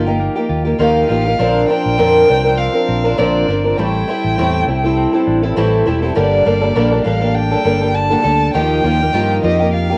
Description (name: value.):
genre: acoustic pop.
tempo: 101 BPM.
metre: 4/4.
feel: swing 55% on 16ths.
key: G minor.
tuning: A4 = 439 Hz.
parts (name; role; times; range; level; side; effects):
fingerpicked twelve-string acoustic guitar; accompaniment; 0.0-10.0 s; G2 to Bb4; -17 LUFS; equal; cassette tape.
direct-recorded clean electric guitar; arpeggios; 0.0-10.0 s; F3 to A4; -27 LUFS; equal; cassette tape.
fingered electric bass; bass; 0.0-9.9 s; E1 to G2; -21 LUFS; equal; none.
dark violin; melody; 0.8-10.0 s; D5 to A5; -22 LUFS; equal; none.
room: moderate spring reverb, RT60 1.1 s.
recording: home recording on cassette.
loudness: -15 LUFS.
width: mono.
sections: 0.0-6.2 A section; 6.2-10.0 B section.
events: none.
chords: 0.0 Ebadd9; 1.4 Bbadd9; 3.8 Am7; 6.2 Gmadd9; 8.5 Ebadd9.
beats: 0.20 0.80 | 1.39 1.99 2.59 3.18 | 3.78 4.38 4.97 5.57 | 6.17 6.76 7.36 7.95 | 8.55 9.14 9.74.